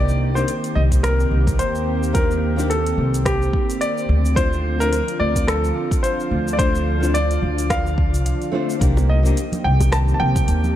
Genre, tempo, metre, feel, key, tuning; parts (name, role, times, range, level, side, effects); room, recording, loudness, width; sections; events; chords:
sunset chillout; 108 BPM; 4/4; swing 57% on 16ths; C dorian; A4 = 440 Hz
clear concert grand piano; melody; 0.0-10.8 s; G4 to A5; -24 LUFS; equal; tape echo, shimmer reverb
nylon-string guitar; accompaniment; 0.0-9.4 s; A3 to C5; -28 LUFS; left 2 dB; auto-pan, shimmer reverb
lush unison pad; sustained chords; 0.1-10.8 s; D3 to G4; -26 LUFS; right 1 dB; chorus, shimmer reverb
upright bass; bass; 0.0-10.8 s; C2 to Eb2; -19 LUFS; equal
smooth R&B drum kit; drums; 0.1-10.7 s; hi-hat, rim click, shaker; -30 LUFS; equal; studio reverb
electronic kick drum; drums; 0.9-10.5 s; -21 LUFS; equal; studio reverb
bongos and congas; percussion; 9.0-10.7 s; -30 LUFS; right 1 dB
light reverb, small room ambience; dark, warm production; -17 LUFS; side -12 dB against mid
0.0-10.8 A section
0.0 Cm7; 4.1 Dm7; 8.8 Cm7